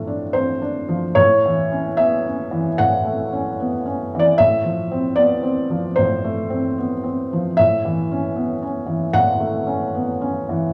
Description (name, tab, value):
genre	neoclassical minimalist piano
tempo	75 BPM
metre	4/4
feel	rubato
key	A major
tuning	A4 = 440 Hz
part	felt-muted upright piano	solo	0.0-10.7 s	A2 to F#5	-20 LUFS	equal	none
room	light reverb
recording	band playing live in one room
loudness	-20 LUFS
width	mono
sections	0.0-10.7 A section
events	none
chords	0.0 F6/A; 1.1 A6; 4.4 F6/A; 7.6 A6